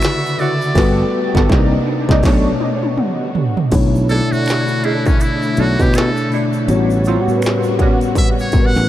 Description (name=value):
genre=R&B, neo-soul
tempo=81 BPM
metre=4/4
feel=swing 60% on 16ths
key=B minor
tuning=A4 = 440 Hz
part: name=trumpet with metal mute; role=melody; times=0.0-8.9 s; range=C#4 to F#5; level=-23 LUFS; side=equal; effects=diffuse ambient delay
part: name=mellow tine electric piano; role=accompaniment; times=0.0-8.9 s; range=A2 to E5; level=-18 LUFS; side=left 2 dB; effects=slow stereo tremolo
part: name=dark studio string section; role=sustained chords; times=0.0-8.9 s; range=C#3 to G4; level=-24 LUFS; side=equal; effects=none
part: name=industrial drum kit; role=drums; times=0.0-8.9 s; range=crash cymbal, hi-hat, kick drum, snare drum, toms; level=-17 LUFS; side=equal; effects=distortion
part: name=finger snaps and tube shaker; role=percussion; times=0.0-8.9 s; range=none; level=-36 LUFS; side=right 4 dB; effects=none
part: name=archtop guitar, miked and amplified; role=second line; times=0.4-8.0 s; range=G3 to D5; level=-24 LUFS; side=right 5 dB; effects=wah, analog chorus, diffuse ambient delay
part: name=modern bright fingered electric bass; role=bass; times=0.8-8.9 s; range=G1 to B2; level=-17 LUFS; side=equal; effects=none
room=moderate huge ambient reverb, RT60 4.6 s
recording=dreamy mix soaked in reverb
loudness=-13 LUFS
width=side -13 dB against mid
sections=0.0-3.7 A section; 3.7-8.9 B section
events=band accent 0.8-3.7; drum fill 2.2-3.7; muted trumpet solo 3.7-8.9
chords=0.0 Dmaj9; 0.8 Gmaj9; 1.5 Cm9; 2.2 Bm9; 3.0 Gmaj7/D; 3.7 Bm11; 6.7 A13